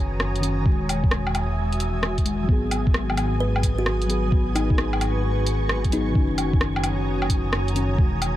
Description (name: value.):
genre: future garage.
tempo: 131 BPM.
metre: 4/4.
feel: swing 66% on 16ths.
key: G# minor.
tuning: A4 = 440 Hz.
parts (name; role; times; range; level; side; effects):
muted felt-like synth keys; accompaniment; 0.0-8.4 s; D#3 to G#4; -28 LUFS; left 2 dB; chorus, sidechain pumping, tape echo.
granular cloud pad; sustained chords; 0.0-8.4 s; F#4 to D#6; -31 LUFS; right 1 dB; built-in reverb, sidechain pumping.
dark detuned saw bass; bass; 0.0-8.4 s; E1 to G#1; -25 LUFS; equal; sidechain pumping.
wind-like tuned noise texture; texture; 0.0-8.4 s; G#5; -37 LUFS; right 7 dB; built-in reverb.
garage drum kit; drums; 0.2-8.3 s; hi-hat, rim click, woodblock; -28 LUFS; equal; none.
electronic kick drum; drums; 0.7-8.1 s; none; -21 LUFS; equal; none.
kalimba; melody; 3.4-6.2 s; D#4 to B4; -30 LUFS; left 2 dB; tape echo.
room: little or no reverb.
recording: vinyl crackle.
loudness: -20 LUFS.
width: side -14 dB against mid.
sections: 0.0-8.4 A section.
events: none.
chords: 0.0 D#m7/F#; 0.7 Emaj9; 2.5 G#m7; 6.2 D#m7/F#.